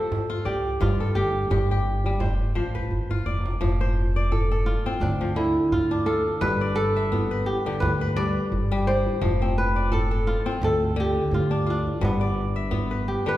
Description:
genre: west african traditional, West African string and xylophone music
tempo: 86 BPM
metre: 4/4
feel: swing 56% on 16ths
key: F lydian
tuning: A4 = 441 Hz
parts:
  - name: kora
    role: melody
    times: 0.0-13.4 s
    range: B3 to D5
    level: -26 LUFS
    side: right 1 dB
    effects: slapback echo
  - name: kora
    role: arpeggios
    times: 0.0-13.4 s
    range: G2 to E5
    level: -28 LUFS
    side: left 2 dB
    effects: none
  - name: djembe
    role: percussion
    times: 0.1-13.4 s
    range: none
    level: -30 LUFS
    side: right 1 dB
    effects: none
  - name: upright bass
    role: bass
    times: 0.5-13.1 s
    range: F1 to D2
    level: -26 LUFS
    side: equal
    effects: none
room: wet recital hall reverb, RT60 1.8 s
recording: heard from further back in the room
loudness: -22 LUFS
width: side -14 dB against mid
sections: 0.0-3.6 A section; 3.6-13.4 B section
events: drum fill 2.7-3.6; kora solo 3.6-13.4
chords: 0.0 F; 0.8 G5; 2.2 F; 5.0 Dm; 6.4 G; 9.2 F; 10.6 Dm; 12.0 G

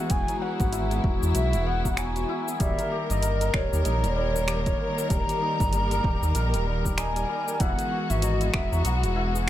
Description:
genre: organic downtempo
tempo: 96 BPM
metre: 4/4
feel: swing 60% on 16ths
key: unclear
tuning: A4 = 439 Hz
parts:
  - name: breathy reedy ney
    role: melody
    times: 0.0-9.5 s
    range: C#5 to A#5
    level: -31 LUFS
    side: left 1 dB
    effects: ping-pong delay
  - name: rich symphonic string section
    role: sustained chords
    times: 0.0-9.5 s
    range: D#3 to A#4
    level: -31 LUFS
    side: left 1 dB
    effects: sidechain pumping
  - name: santur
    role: arpeggios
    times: 0.0-9.5 s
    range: F#3 to D#5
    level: -31 LUFS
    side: left 2 dB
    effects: ping-pong delay
  - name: round analog bass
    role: bass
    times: 0.1-9.5 s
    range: D#1 to E2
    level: -26 LUFS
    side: equal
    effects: tube saturation, sidechain pumping
  - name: deep house drum kit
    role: drums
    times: 0.1-9.5 s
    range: cabasa, finger snaps, hi-hat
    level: -32 LUFS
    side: equal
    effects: overdrive, studio reverb
  - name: electronic kick drum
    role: drums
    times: 0.1-8.7 s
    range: none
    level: -28 LUFS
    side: equal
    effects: overdrive, studio reverb
room: light reverb, small room ambience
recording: none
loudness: -23 LUFS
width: side -13 dB against mid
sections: 0.0-9.5 A section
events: none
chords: 0.0 Eadd9; 2.6 D#; 7.6 Eadd9

